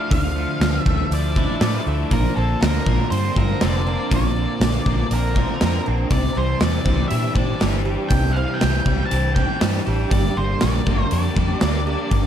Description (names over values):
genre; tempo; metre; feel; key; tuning
rock, shoegaze and dream pop; 120 BPM; 4/4; straight; unclear; A4 = 440 Hz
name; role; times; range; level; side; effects
octave-fuzz lead guitar; melody; 0.0-12.3 s; A4 to A5; -27 LUFS; equal; distortion, digital delay
picked twelve-string acoustic guitar; arpeggios; 0.0-12.3 s; E3 to G4; -31 LUFS; right 7 dB; wide subtle chorus, digital delay
overdriven semi-hollow guitar; riff; 0.0-12.3 s; G2 to G4; -27 LUFS; left 10 dB; analog chorus
twangy electric guitar; riff; 0.0-12.3 s; G2 to D4; -28 LUFS; right 10 dB; reverse reverb
vintage muted fingered electric bass; bass; 0.1-12.3 s; F1 to Bb2; -22 LUFS; equal; none
gated 80s drum kit; drums; 0.1-12.2 s; hi-hat, kick drum, snare drum; -21 LUFS; equal; none
room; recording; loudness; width
studio reverb; dark, warm production; -17 LUFS; side -9 dB against mid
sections
0.0-12.3 A section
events
none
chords
0.0 Dmadd9; 2.1 Bbadd9; 6.1 Cadd9; 10.1 Gm